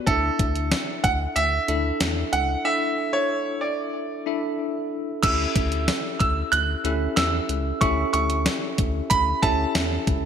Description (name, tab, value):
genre	1980s-style pop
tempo	93 BPM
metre	4/4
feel	straight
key	unclear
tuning	A4 = 440 Hz
part	bell-like tine electric piano	accompaniment	0.0-10.3 s	C#4 to E5	-28 LUFS	left 1 dB	medium stereo tremolo
part	bright concert grand piano	melody	0.1-10.0 s	A4 to F#6	-24 LUFS	right 3 dB	none
part	rubbery square bass	bass	0.1-10.3 s	C#2 to E2	-27 LUFS	left 1 dB	none
part	clean 12-bit digital drum machine	drums	0.1-10.2 s	crash cymbal, hi-hat, kick drum, snare drum, tambourine	-24 LUFS	left 1 dB	gated reverb
room	moderate plate reverb, RT60 2.6 s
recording	bright 1980s-style digital production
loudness	-21 LUFS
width	side -8 dB against mid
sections	0.0-5.2 A section; 5.2-10.3 A section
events	break 2.7-5.2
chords	0.1 Dsus2; 5.2 A7